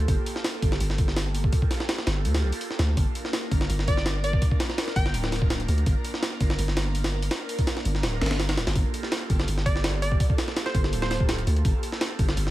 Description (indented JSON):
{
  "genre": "drum and bass, jungle",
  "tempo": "166 BPM",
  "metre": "4/4",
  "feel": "straight",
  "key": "G minor",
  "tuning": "A4 = 440 Hz",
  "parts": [
    { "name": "airy breathy pad", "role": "sustained chords", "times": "0.0-12.5 s", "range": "Bb3 to Bb4", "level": "-34 LUFS", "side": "right 2 dB", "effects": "chorus, phaser" },
    { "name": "long sustained 808-style bass", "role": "bass", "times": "0.0-12.5 s", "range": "D1 to D2", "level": "-25 LUFS", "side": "equal", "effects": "none" },
    { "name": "jungle sampler-style drum kit", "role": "drums", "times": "0.0-12.5 s", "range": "hi-hat, kick drum, snare drum", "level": "-25 LUFS", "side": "equal", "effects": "studio reverb" },
    { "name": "glassy wavetable pluck", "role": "melody", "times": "3.9-5.3, 9.7-11.2 s", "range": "C5 to G5", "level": "-33 LUFS", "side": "equal", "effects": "chorus, cassette tape, dub echo" }
  ],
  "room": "digital ambience",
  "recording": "vinyl crackle",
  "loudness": "-23 LUFS",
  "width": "side -16 dB against mid",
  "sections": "0.0-12.5 A section",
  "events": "none",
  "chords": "0.0 Gm9; 3.0 Bb; 8.8 Gm9"
}